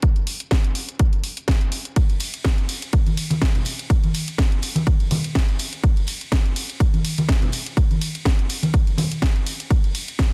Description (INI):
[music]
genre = house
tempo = 124 BPM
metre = 4/4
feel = swing 55% on 16ths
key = none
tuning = none
[part]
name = electronic kick drum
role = drums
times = 0.0-10.3 s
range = none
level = -21 LUFS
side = equal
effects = overdrive
[part]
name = house drum kit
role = drums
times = 0.0-10.3 s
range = hi-hat, ride cymbal, snare drum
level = -30 LUFS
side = equal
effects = overdrive, sidechain pumping on hats, sidechain pumping on cymbals
[part]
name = tambourine and congas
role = percussion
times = 2.0-10.3 s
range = none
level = -28 LUFS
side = equal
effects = sidechain pumping on perc
[sound]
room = little or no reverb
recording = dense, heavily limited modern master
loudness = -21 LUFS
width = mono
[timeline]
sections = 0.0-10.3 A section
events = none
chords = none